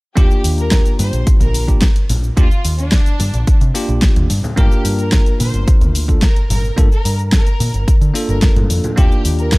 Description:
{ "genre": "nu-disco, nu disco", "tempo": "109 BPM", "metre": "4/4", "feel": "straight", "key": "unclear", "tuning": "A4 = 440 Hz", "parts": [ { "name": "rich studio violin section", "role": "melody", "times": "0.2-9.6 s", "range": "D4 to C5", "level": "-26 LUFS", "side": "equal", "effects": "tape echo" }, { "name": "bell-like tine electric piano", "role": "accompaniment", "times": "0.2-9.6 s", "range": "Bb3 to Bb4", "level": "-23 LUFS", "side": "equal", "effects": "medium stereo tremolo" }, { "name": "overdriven picked electric bass", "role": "bass", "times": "0.2-9.6 s", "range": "G1 to D3", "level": "-17 LUFS", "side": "equal", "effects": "none" }, { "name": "electronic kick drum", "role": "drums", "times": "0.2-9.6 s", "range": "none", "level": "-13 LUFS", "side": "equal", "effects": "small room ambience" }, { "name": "pop drum kit", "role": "drums", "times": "0.2-9.6 s", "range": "cabasa, hi-hat, snare drum", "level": "-21 LUFS", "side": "equal", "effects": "small room ambience" }, { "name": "congas", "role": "percussion", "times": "1.0-9.0 s", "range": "none", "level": "-27 LUFS", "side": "left 1 dB", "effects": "none" } ], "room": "digital ambience", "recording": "dry, gritty hardware recording, cassette tape", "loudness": "-12 LUFS", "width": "side -24 dB against mid", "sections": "0.2-9.6 A section", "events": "none", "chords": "0.2 Ebmaj7; 4.3 Gm7; 9.0 Ebmaj7", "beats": "| 0.17 0.72 1.27 1.82 | 2.37 2.92 3.47 4.02 | 4.57 5.12 5.67 6.22 | 6.78 7.33 7.88 8.43 | 8.98 9.53" }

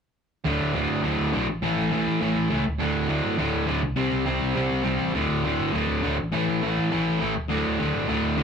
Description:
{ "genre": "punk", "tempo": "204 BPM", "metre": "4/4", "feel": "straight", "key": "unclear", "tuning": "A4 = 440 Hz", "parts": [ { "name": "distorted electric guitar", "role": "riff", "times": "0.4-8.4 s", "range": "D2 to C4", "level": "-26 LUFS", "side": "right 5 dB", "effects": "distortion" }, { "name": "distorted electric guitar", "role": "riff", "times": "0.5-8.4 s", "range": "D2 to C4", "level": "-26 LUFS", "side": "left 5 dB", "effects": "distortion" }, { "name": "picked electric bass", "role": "bass", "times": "0.5-8.4 s", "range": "D1 to A2", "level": "-30 LUFS", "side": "equal", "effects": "none" } ], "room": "moderate studio reverb, RT60 0.6 s", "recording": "rough rehearsal-room recording", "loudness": "-22 LUFS", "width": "side -6 dB against mid", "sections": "0.4-8.4 A section", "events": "none", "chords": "0.4 D5; 1.5 A5; 2.7 D5; 3.8 C5; 5.1 D5; 6.2 A5; 7.3 D5", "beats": "| 0.45 0.74 1.04 1.33 | 1.62 1.92 2.21 2.50 | 2.80 3.09 3.39 3.68 | 3.97 4.27 4.56 4.85 | 5.15 5.44 5.73 6.03 | 6.32 6.61 6.91 7.20 | 7.49 7.79 8.08 8.38" }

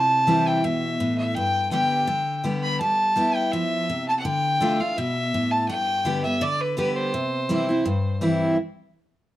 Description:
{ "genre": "bluegrass", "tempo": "166 BPM", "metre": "4/4", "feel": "straight", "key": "C major", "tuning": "A4 = 440 Hz", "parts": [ { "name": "clear fiddle", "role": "melody", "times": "0.0-8.2 s", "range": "B4 to B5", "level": "-23 LUFS", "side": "equal", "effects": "none" }, { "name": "picked steel-string acoustic guitar", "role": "accompaniment", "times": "0.0-8.6 s", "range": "G2 to G4", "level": "-24 LUFS", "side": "equal", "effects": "none" } ], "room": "moderate studio reverb, RT60 0.7 s", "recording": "dark, warm production", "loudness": "-21 LUFS", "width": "side -14 dB against mid", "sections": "0.0-8.6 A section", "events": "none", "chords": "0.0 C; 1.4 G; 2.8 G6; 4.2 Dm; 5.7 G; 7.1 C; 8.6 N.C.", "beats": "0.27 0.63 0.99 | 1.35 1.72 2.08 2.44 | 2.80 3.16 3.52 3.88 | 4.25 4.61 4.97 5.33 | 5.69 6.05 6.41 6.77 | 7.13 7.49 7.86 8.22" }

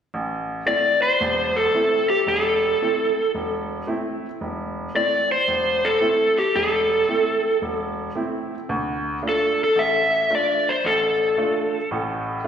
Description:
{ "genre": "blues", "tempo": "112 BPM", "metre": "4/4", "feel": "swing 67% on 8ths", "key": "A minor", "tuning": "A4 = 439 Hz", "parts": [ { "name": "clear upright piano", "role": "accompaniment", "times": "0.1-12.5 s", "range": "E1 to F4", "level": "-27 LUFS", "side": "right 1 dB", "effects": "slapback echo" }, { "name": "overdriven slide guitar", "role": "melody", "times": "0.7-11.9 s", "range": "G4 to E5", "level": "-19 LUFS", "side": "equal", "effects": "slapback echo" } ], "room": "moderate lush hall reverb, RT60 2.4 s", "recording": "live gig heard through the venue's PA, recital hall reverb", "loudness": "-19 LUFS", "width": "side -8 dB against mid", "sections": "0.1-12.5 A section", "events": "none", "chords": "0.1 Am; 8.7 Dm", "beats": "| 0.14 0.67 1.20 1.74 | 2.27 2.81 3.34 3.88 | 4.41 4.95 5.48 6.02 | 6.55 7.09 7.63 8.16 | 8.70 9.24 9.77 10.31 | 10.85 11.38 11.92 12.46" }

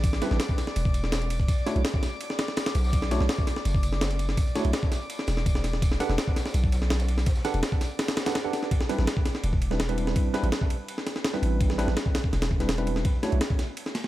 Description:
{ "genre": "drum and bass, jungle", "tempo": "166 BPM", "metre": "4/4", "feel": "straight", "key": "A dorian", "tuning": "A4 = 440 Hz", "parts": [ { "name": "long sustained 808-style bass", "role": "bass", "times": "0.0-13.4 s", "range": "E1 to B1", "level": "-26 LUFS", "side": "equal", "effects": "none" }, { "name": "breakbeat sampler-style drum kit", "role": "drums", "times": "0.0-14.1 s", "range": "kick drum, ride cymbal, snare drum", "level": "-26 LUFS", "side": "equal", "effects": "none" }, { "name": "crunchy breakbeat drum kit", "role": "drums", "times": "0.0-8.6 s", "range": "hi-hat, snare drum, tambourine", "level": "-43 LUFS", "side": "equal", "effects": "high-pass filter on hats, high-pass filter on snare, high-pass filter on perc, high-pass filter on room" }, { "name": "drifting glass-harmonics texture", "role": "texture", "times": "0.0-8.7 s", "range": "D5 to D6", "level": "-39 LUFS", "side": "left 3 dB", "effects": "chorus, built-in reverb" }, { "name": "tine electric piano", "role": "stabs", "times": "0.2-13.4 s", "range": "G3 to F#5", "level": "-32 LUFS", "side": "right 2 dB", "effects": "overdrive, medium stereo tremolo, dub echo" } ], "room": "small room ambience", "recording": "none", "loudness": "-24 LUFS", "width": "side -15 dB against mid", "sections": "0.0-8.7 A section; 8.7-14.1 A section", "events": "drop 0.0-8.7, 8.7-14.1", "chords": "0.0 Asus4; 1.5 Bm11; 5.1 Em11; 8.7 Am11; 13.1 Bm11", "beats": "| 0.04 0.40 0.76 1.12 | 1.49 1.85 2.21 2.57 | 2.93 3.29 3.65 4.02 | 4.38 4.74 5.10 5.46 | 5.82 6.18 6.55 6.91 | 7.27 7.63 7.99 8.35 | 8.71 9.08 9.44 9.80 | 10.16 10.52 10.88 11.24 | 11.61 11.97 12.33 12.69 | 13.05 13.41 13.78" }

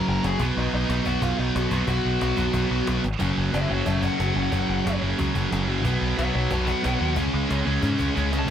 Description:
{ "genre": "punk rock", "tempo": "182 BPM", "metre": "4/4", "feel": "straight", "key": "unclear", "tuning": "A4 = 442 Hz", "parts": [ { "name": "dark smooth lead guitar", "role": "melody", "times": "0.0-8.5 s", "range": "D#4 to A#5", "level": "-30 LUFS", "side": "left 2 dB", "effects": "overdrive" }, { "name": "distorted electric guitar", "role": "riff", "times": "0.0-8.5 s", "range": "F#2 to C#4", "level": "-29 LUFS", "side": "left 9 dB", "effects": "distortion" }, { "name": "heavy high-gain guitar", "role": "riff", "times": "0.0-8.5 s", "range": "F#2 to C#4", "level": "-31 LUFS", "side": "equal", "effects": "distortion" }, { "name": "sludgy distorted guitar", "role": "riff", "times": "0.0-8.5 s", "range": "F#2 to C#4", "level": "-27 LUFS", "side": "right 7 dB", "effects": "overdrive" }, { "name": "growling picked electric bass", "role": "bass", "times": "0.1-8.5 s", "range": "F#1 to G#2", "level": "-26 LUFS", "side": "left 1 dB", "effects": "overdrive" }, { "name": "cajon", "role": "drums", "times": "0.2-8.5 s", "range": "none", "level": "-34 LUFS", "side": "left 1 dB", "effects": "none" } ], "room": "light reverb", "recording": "none", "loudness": "-21 LUFS", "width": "side -9 dB against mid", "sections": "0.0-3.2 A section; 3.2-8.5 B section", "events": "drum fill 3.0, 8.2-8.5; lead electric guitar solo 3.2-8.5", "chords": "0.4 B; 3.2 F#5; 5.8 B; 7.2 C#5", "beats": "0.23 | 0.56 0.89 1.22 1.55 | 1.88 2.21 2.54 2.87 | 3.20 3.53 3.86 4.19 | 4.53 4.86 5.19 5.52 | 5.85 6.18 6.51 6.84 | 7.17 7.50 7.83 8.16 | 8.49" }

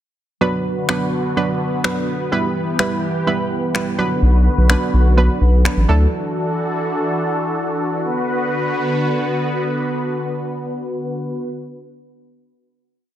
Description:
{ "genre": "dance-pop", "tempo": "126 BPM", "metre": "4/4", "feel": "straight", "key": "B minor", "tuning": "A4 = 440 Hz", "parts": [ { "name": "analog pluck", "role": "accompaniment", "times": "0.4-6.1 s", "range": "F#3 to B4", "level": "-21 LUFS", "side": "right 3 dB", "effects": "chorus" }, { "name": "filtered supersaw swell", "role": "sustained chords", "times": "0.4-11.5 s", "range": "D3 to B4", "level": "-21 LUFS", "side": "equal", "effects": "none" }, { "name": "electronic finger snaps", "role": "drums", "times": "0.9-5.8 s", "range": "none", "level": "-24 LUFS", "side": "left 2 dB", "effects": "overdrive, soft clipping on snare" }, { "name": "saturated sub bass", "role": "bass", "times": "4.2-6.1 s", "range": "A1 to D2", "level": "-12 LUFS", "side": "equal", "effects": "none" } ], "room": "light reverb, digital ambience", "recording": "dense, heavily limited modern master", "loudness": "-16 LUFS", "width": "side -11 dB against mid", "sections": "0.4-8.0 verse; 8.0-11.8 final chord", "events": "none", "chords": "0.4 Bm; 2.3 Em; 4.0 Bm; 5.9 Dadd9; 8.0 Bm", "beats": "| 0.41 0.89 1.36 1.84 | 2.32 2.79 3.27 3.75 | 4.22 4.70 5.17 5.65 | 6.13 6.60 7.08 7.56 | 8.03 8.51 8.98 9.46 | 9.94 10.41 10.89 11.37" }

